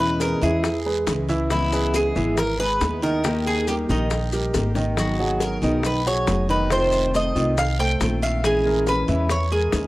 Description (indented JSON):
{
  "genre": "latin, Cuban son and guajira",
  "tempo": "138 BPM",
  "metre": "4/4",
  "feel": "straight",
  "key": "G# minor",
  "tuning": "A4 = 440 Hz",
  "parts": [
    { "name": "Cuban tres", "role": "melody", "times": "0.0-9.9 s", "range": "D#4 to G5", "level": "-24 LUFS", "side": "equal", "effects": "none" },
    { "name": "fingerpicked steel-string acoustic guitar", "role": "accompaniment", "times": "0.0-9.9 s", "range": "B2 to G#4", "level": "-27 LUFS", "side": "left 2 dB", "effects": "none" },
    { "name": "warm grand piano", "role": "arpeggios", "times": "0.0-9.9 s", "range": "D#3 to E5", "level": "-26 LUFS", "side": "right 2 dB", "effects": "none" },
    { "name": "upright bass", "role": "bass", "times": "0.0-9.9 s", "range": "E#1 to E2", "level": "-25 LUFS", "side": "equal", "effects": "none" },
    { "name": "bongos", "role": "percussion", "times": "0.2-9.9 s", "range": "none", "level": "-29 LUFS", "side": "left 4 dB", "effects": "none" },
    { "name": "guiro", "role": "percussion", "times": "0.2-9.9 s", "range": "none", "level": "-37 LUFS", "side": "right 5 dB", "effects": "none" },
    { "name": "maracas", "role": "percussion", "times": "0.2-9.9 s", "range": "none", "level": "-36 LUFS", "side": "left 6 dB", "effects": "none" }
  ],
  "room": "small room ambience",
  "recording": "dry, close 1970s-style studio recording",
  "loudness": "-19 LUFS",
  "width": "side -18 dB against mid",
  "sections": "0.0-9.9 A section",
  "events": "drum fill 4.5-5.0",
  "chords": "0.0 E6; 1.5 C#m7; 3.2 D#; 5.0 G#m7; 6.7 F7; 8.4 A#m7b5",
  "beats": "0.21 0.64 1.07 | 1.51 1.94 2.38 2.81 | 3.25 3.68 4.11 4.55 | 4.98 5.41 5.85 6.28 | 6.71 7.14 7.58 8.01 | 8.44 8.87 9.30 9.73"
}